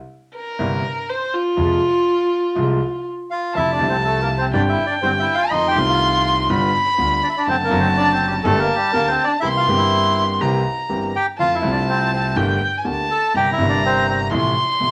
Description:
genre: tango.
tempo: 123 BPM.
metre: 4/4.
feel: rubato.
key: F harmonic minor, F major from 3.6 s.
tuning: A4 = 440 Hz.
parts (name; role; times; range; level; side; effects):
warm violin; second line; 0.4-14.9 s; F4 to C6; -22 LUFS; equal; none.
warm concert grand piano; accompaniment; 0.6-14.9 s; G1 to G4; -24 LUFS; equal; none.
upright bass; bass; 0.6-14.9 s; F#1 to F2; -29 LUFS; equal; none.
bandoneon; melody; 3.3-14.2 s; G3 to A5; -22 LUFS; equal; none.
room: wet studio reverb, RT60 0.6 s.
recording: none.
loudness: -19 LUFS.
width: mono.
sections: 0.0-3.6 A section; 3.6-14.9 B section.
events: violin solo 0.0-3.6.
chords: 0.0 C7; 1.6 Fm; 3.6 Fmaj7; 4.5 Csus2/G; 5.5 F7; 6.5 G7; 7.5 D7/F#; 8.4 Gmadd9; 9.4 C7; 11.4 Fmaj7; 12.4 Gmadd9; 13.3 C7/G; 14.3 Fmaj7/A.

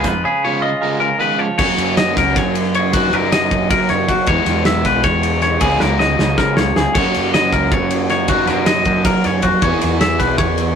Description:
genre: math rock and midwest emo.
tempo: 314 BPM (eighths).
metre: 7/8.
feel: straight.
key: F# major.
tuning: A4 = 440 Hz.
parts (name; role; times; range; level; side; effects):
twangy electric guitar; accompaniment; 0.0-1.6 s; G#2 to B4; -22 LUFS; right 5 dB; none.
twangy electric guitar; arpeggios; 0.0-10.7 s; F#4 to E5; -18 LUFS; left 3 dB; none.
overdriven semi-hollow guitar; riff; 0.0-10.8 s; C#3 to G#4; -20 LUFS; right 3 dB; none.
fuzz fingered electric bass; bass; 0.0-10.8 s; B1 to F#3; -21 LUFS; equal; overdrive.
loose indie drum kit; drums; 0.0-10.7 s; crash cymbal, hi-hat, kick drum, ride cymbal, snare drum; -19 LUFS; equal; none.
room: moderate studio reverb, RT60 0.6 s.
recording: rough rehearsal-room recording, warm saturation.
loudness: -13 LUFS.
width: side -7 dB against mid.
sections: 0.0-1.6 A section; 1.6-10.8 B section.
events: drum fill 5.8-6.9.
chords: 0.0 C#7; 1.6 F#6; 2.9 D#m7/F#; 4.3 E6; 5.6 C#13; 6.9 F#6; 8.3 D#m7/F#; 9.6 E6.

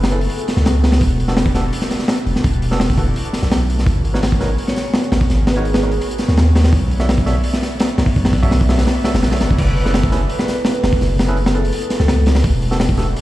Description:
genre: drum and bass, jungle.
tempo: 168 BPM.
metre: 4/4.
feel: straight.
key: unclear.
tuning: A4 = 440 Hz.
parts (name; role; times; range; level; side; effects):
long sustained 808-style bass; bass; 0.0-13.1 s; E1 to D#2; -16 LUFS; equal; tube saturation.
crunchy breakbeat drum kit; drums; 0.0-13.2 s; crash cymbal, hi-hat, kick drum, snare drum; -17 LUFS; equal; none.
vibraphone with medium hard mallets; melody; 0.1-0.7, 4.7-6.1, 10.4-12.1 s; G#4 to C#5; -27 LUFS; equal; dub echo.
overdriven tine electric piano; stabs; 0.1-13.1 s; B3 to E5; -28 LUFS; right 2 dB; vintage 12-bit sampler grit, dub echo.
room: little or no reverb.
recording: played on a big sound system in a bare room, large studio reverb, vinyl crackle.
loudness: -14 LUFS.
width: side -15 dB against mid.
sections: 0.0-9.6 A section; 9.6-13.2 A section.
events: drop 0.0-9.6, 9.6-13.2.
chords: 0.0 F#m11; 1.0 Em11; 3.9 G#m11; 6.7 Bm11; 9.6 F#m11; 12.4 Em11.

